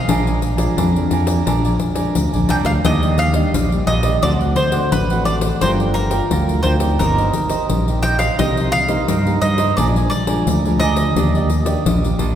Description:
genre	samba and choro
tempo	87 BPM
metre	4/4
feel	straight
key	Eb major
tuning	A4 = 440 Hz
part	bowl-back mandolin	melody	0.0-12.4 s	Bb4 to G5	-22 LUFS	equal	none
part	cavaquinho	accompaniment	0.0-12.4 s	D4 to Ab5	-24 LUFS	right 6 dB	none
part	nylon-string guitar	accompaniment	0.0-12.4 s	F2 to Bb4	-23 LUFS	left 2 dB	none
part	modern bright fingered electric bass	bass	0.1-12.4 s	G1 to G2	-18 LUFS	equal	none
part	pandeiro	percussion	0.1-12.4 s	none	-22 LUFS	left 4 dB	none
room	wet church reverb, RT60 2.7 s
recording	recorded in a church or concert hall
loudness	-15 LUFS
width	side -10 dB against mid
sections	0.0-12.4 A section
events	none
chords	0.1 Bb7; 2.9 Ebmaj7; 4.2 D7; 5.6 Gm7; 7.0 Eb6/G; 8.4 Cm7; 9.8 Bb7; 11.2 Ebmaj7

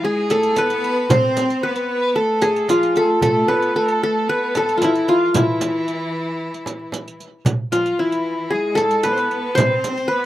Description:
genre	Arabic maqam ensemble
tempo	113 BPM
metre	4/4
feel	straight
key	A maqam nahawand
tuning	A4 = 439 Hz
part	qanun	melody	0.0-10.3 s	E4 to C5	-18 LUFS	equal	none
part	bright studio cello section	second line	0.0-10.3 s	E3 to C4	-27 LUFS	equal	slapback echo
part	clear violin	second line	0.0-10.3 s	E4 to C5	-26 LUFS	left 2 dB	none
part	darbuka	percussion	0.2-10.3 s	none	-29 LUFS	equal	none
part	frame drum	percussion	0.3-10.0 s	none	-23 LUFS	right 2 dB	none
part	riq	percussion	0.3-10.0 s	none	-29 LUFS	right 4 dB	none
room	light reverb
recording	recorded outdoors, with no room sound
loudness	-16 LUFS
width	side -14 dB against mid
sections	0.0-10.3 A section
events	none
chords	none

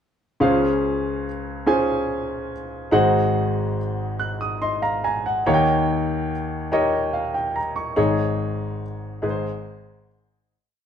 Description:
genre	gospel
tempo	48 BPM (dotted quarters)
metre	6/8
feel	straight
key	Db major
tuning	A4 = 440 Hz
part	warm baby grand piano	solo	0.4-10.5 s	Ab1 to Gb6	-20 LUFS	equal	none
room	wet stone room reverb, RT60 1.1 s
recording	band playing live in one room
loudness	-20 LUFS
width	side -8 dB against mid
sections	0.4-10.5 A section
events	grand piano fill 4.2-5.5; fade-out 8.0-10.5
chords	0.4 Dbmaj7; 2.9 Ab7; 5.5 Eb7; 8.0 Absus4; 9.2 Ab

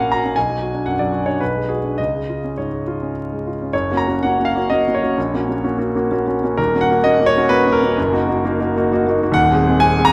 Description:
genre	classical, romantic character piece for solo piano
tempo	99-137 BPM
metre	3/4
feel	rubato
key	F# major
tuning	A4 = 439 Hz
part	clear concert grand piano	solo	0.0-10.1 s	D#1 to A#5	-18 LUFS	equal	none
room	moderate recital hall reverb, RT60 1.6 s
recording	vinyl crackle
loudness	-18 LUFS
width	mono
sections	0.0-3.7 A section; 3.7-10.1 B section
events	none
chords	0.4 Bm; 1.4 G#m7b5/B; 2.0 C#; 3.7 F#; 5.2 F#/A#; 6.6 D#m7; 8.0 D#m/F#; 9.4 Ab7/Eb

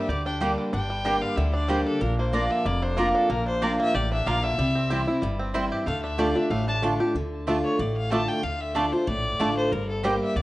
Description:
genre	bluegrass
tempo	187 BPM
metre	4/4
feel	swing 54% on 8ths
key	D minor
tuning	A4 = 440 Hz
part	bluegrass banjo	melody	0.0-10.1 s	D3 to G4	-33 LUFS	right 1 dB	none
part	clear fiddle	melody	0.0-10.4 s	A4 to A5	-30 LUFS	left 2 dB	none
part	picked steel-string acoustic guitar	accompaniment	0.0-10.4 s	F2 to G4	-26 LUFS	equal	none
part	upright bass	bass	0.1-10.4 s	F1 to D2	-29 LUFS	equal	none
part	mandolin	stabs	0.4-10.1 s	A3 to Bb5	-29 LUFS	right 2 dB	none
room	moderate large studio reverb, RT60 0.8 s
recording	worn, warbling old tape, cassette tape, warbly pitch drift, nothing above 10.8 kHz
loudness	-22 LUFS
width	side -18 dB against mid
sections	0.0-7.2 A section; 7.2-10.4 A section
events	none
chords	0.0 Gm; 2.0 Bb; 4.6 C; 5.9 Dm; 9.7 Gm

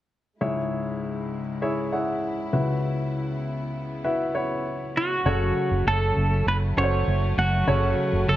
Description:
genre	piano-driven pop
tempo	99 BPM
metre	4/4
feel	straight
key	unclear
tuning	A4 = 439 Hz
part	clear baby grand piano	accompaniment	0.4-8.4 s	C#2 to F#5	-26 LUFS	left 1 dB	none
part	warm studio string section	sustained chords	0.4-8.4 s	C#3 to E4	-33 LUFS	equal	none
part	twelve-string electric guitar	melody	5.0-8.4 s	F#4 to C#5	-25 LUFS	right 2 dB	none
part	vintage muted fingered electric bass	bass	5.3-8.4 s	F#1	-23 LUFS	right 1 dB	none
room	moderate large studio reverb, RT60 1.1 s, small room ambience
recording	dark, warm production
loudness	-22 LUFS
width	side -13 dB against mid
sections	0.4-5.3 A section; 5.3-8.4 B section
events	none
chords	0.4 C#m; 2.5 Bsus4/C#; 5.3 F#m

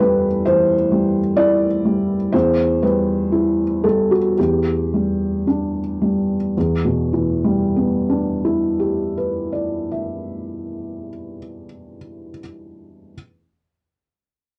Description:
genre	neoclassical minimalist piano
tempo	54-66 BPM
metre	4/4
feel	rubato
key	E minor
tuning	A4 = 440 Hz
part	felt-muted upright piano	solo	0.0-13.2 s	E2 to E5	-20 LUFS	equal	cassette tape
room	wet booth ambience, RT60 0.2 s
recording	home recording on cassette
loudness	-19 LUFS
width	mono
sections	0.0-6.6 A section; 6.6-10.9 B section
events	slowing down 0.0-6.6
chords	0.0 Am7/E; 4.4 Em7

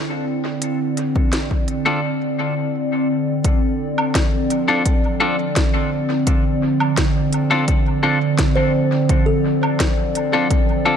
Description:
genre	ambient dub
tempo	85 BPM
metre	4/4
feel	straight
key	D minor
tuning	A4 = 440 Hz
part	warbly tape-like pad	sustained chords	0.0-11.0 s	D3 to D5	-19 LUFS	right 1 dB	chorus, built-in reverb
part	kalimba	arpeggios	0.0-0.6, 8.6-11.0 s	A4 to C5	-25 LUFS	equal	tape echo
part	organic electronic drum kit	drums	0.6-10.7 s	hi-hat, snare drum, woodblock	-26 LUFS	equal	dub echo
part	electronic kick drum	drums	1.2-10.7 s	none	-19 LUFS	equal	overdrive
part	clean electric guitar	stabs	1.9-11.0 s	C4 to A4	-22 LUFS	left 3 dB	dub echo
room	moderate echo chamber reverb, RT60 1.9 s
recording	none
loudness	-16 LUFS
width	side -8 dB against mid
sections	0.0-3.4 A section; 3.4-11.0 B section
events	none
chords	0.0 D7(no3); 3.4 Dm7

